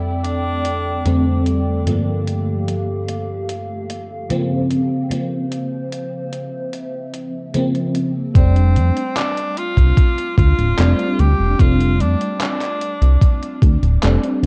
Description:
vaporwave; 74 BPM; 4/4; straight; F major; A4 = 438 Hz
FM electric piano with soft pad layer; accompaniment; 0.0-14.5 s; F2 to D4; -23 LUFS; equal; phaser, ensemble chorus, analog delay
warbly tape-like pad; sustained chords; 0.0-8.3 s; C4 to G5; -31 LUFS; equal; chorus, built-in reverb
bright tenor saxophone; melody; 0.2-1.4, 8.4-13.6 s; C4 to G4; -27 LUFS; equal; tape echo
detuned 8-bit digital drum machine; drums; 0.2-14.5 s; handclaps, hi-hat; -30 LUFS; equal; overdrive, vintage 12-bit sampler grit
chorused synth bass; bass; 8.4-14.5 s; D1 to F2; -16 LUFS; equal
electronic kick drum; drums; 8.4-13.8 s; -15 LUFS; equal; vintage 12-bit sampler grit
little or no reverb; dark, warm production, cassette tape; -18 LUFS; mono
0.0-8.4 A section; 8.4-14.5 B section
0.0 F6; 1.9 Gm9; 4.7 Bbmadd9; 8.4 F6

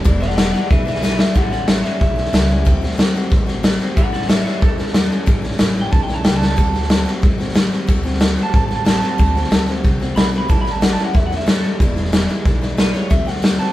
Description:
rockabilly; 184 BPM; 4/4; straight; A mixolydian; A4 = 440 Hz
picked steel-string acoustic guitar; accompaniment; 0.0-13.7 s; E2 to F#4; -27 LUFS; left 3 dB
upright bass; bass; 0.1-13.6 s; E1 to E2; -23 LUFS; equal
raw garage drum kit; drums; 0.1-13.6 s; hi-hat, kick drum, snare drum; -15 LUFS; equal
electric guitar through a small old amp; melody; 0.2-13.7 s; A4 to B5; -24 LUFS; equal
light reverb; band playing live in one room; -14 LUFS; side -15 dB against mid
0.0-1.4 A section; 1.4-13.7 B section
clean electric guitar solo 0.0-1.4; drum fill 1.0-1.4, 6.4
0.1 E7; 1.4 A7; 2.7 D7; 4.0 A7; 6.6 D7; 10.5 A7; 11.8 E7; 13.1 D7

